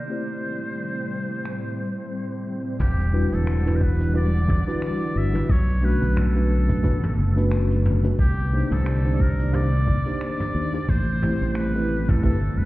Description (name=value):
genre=sunset chillout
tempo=89 BPM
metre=4/4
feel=swing 56% on 16ths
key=E minor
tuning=A4 = 440 Hz
part: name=trumpet with metal mute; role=melody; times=0.0-12.7 s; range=G4 to E5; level=-33 LUFS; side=equal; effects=ping-pong delay
part: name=mellow tine electric piano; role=accompaniment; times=0.0-12.4 s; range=G3 to C5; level=-28 LUFS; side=equal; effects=medium stereo tremolo, auto-pan
part: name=ethereal airy pad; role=sustained chords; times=0.0-12.7 s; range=A2 to F#5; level=-31 LUFS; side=equal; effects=ensemble chorus, built-in reverb
part: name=soft brush drum kit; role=drums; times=1.5-12.5 s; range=crash cymbal, finger snaps, hi-hat, shaker, toms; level=-31 LUFS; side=equal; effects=none
part: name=modern bright fingered electric bass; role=bass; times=2.8-12.7 s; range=E1 to Eb2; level=-21 LUFS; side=equal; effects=none
part: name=electronic kick drum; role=drums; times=2.8-12.4 s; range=none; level=-21 LUFS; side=equal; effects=none
room=light reverb, studio reverb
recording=heard muffled through a wall, stone room reverb, EQ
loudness=-20 LUFS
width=side -18 dB against mid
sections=0.0-2.8 A section; 2.8-12.7 B section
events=filter sweep on tine electric piano 0.0-2.8; filter sweep on ambient pad 0.0-2.8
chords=0.1 Am7; 2.8 Em9; 5.5 Bm9; 8.2 Cm9; 10.9 Am9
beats=| 0.10 0.78 1.45 2.12 | 2.80 3.47 4.15 4.82 | 5.49 6.17 6.84 7.52 | 8.19 8.87 9.54 10.21 | 10.89 11.56 12.24